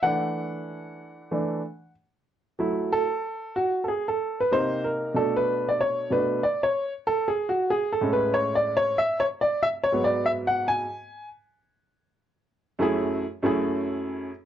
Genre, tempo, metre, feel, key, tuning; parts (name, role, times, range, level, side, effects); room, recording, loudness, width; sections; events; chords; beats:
hip hop; 94 BPM; 4/4; swing 62% on 16ths; F# minor; A4 = 440 Hz
warm upright piano; solo; 0.0-14.3 s; F#2 to G#5; -23 LUFS; equal
moderate small room ambience, RT60 0.5 s; worn, warbling old tape, cassette tape, warbly pitch drift, lossy compression artefacts; -23 LUFS; side -10 dB against mid
0.0-2.6 A section; 2.6-12.8 B section; 12.8-14.5 C section
upright piano solo 0.0-2.6, 2.6-12.8
0.0 E9sus4; 2.6 F#m7; 4.5 Cm7; 5.1 Bm7; 7.7 Amaj7; 9.9 G#m7; 12.8 F#m7
| 0.04 0.67 1.31 1.95 | 2.59 3.23 3.87 4.50 | 5.14 5.78 6.42 7.06 | 7.70 8.33 8.97 9.61 | 10.25 10.89 11.53 12.16 | 12.80 13.44 14.08